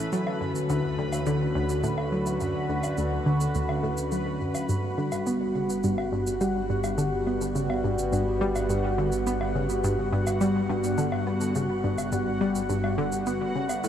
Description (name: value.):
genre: ambient, sequencer-driven space music.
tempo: 105 BPM.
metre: 4/4.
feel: straight.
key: G lydian.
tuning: A4 = 440 Hz.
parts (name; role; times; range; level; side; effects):
sweeping resonant pad; sustained chords; 0.0-13.9 s; D3 to A4; -29 LUFS; equal; chorus, phaser, shimmer reverb.
fat analog bass; bass; 0.0-13.9 s; G1 to D2; -35 LUFS; equal; none.
bubbling stepped-filter texture; texture; 0.0-13.9 s; F#4 to B5; -35 LUFS; equal; chorus, built-in reverb, shimmer reverb.
tight sequenced synth; riff; 0.1-13.9 s; D2 to B3; -28 LUFS; equal; chorus, tape echo.
shaker and woodblock; percussion; 0.1-13.9 s; none; -38 LUFS; right 1 dB; tape echo.
room: wet huge ambient reverb, RT60 7.7 s.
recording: in a vast, echoing space.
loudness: -24 LUFS.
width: side -9 dB against mid.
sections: 0.0-13.9 A section.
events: none.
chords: 0.1 Dmaj7; 4.7 Gmaj7.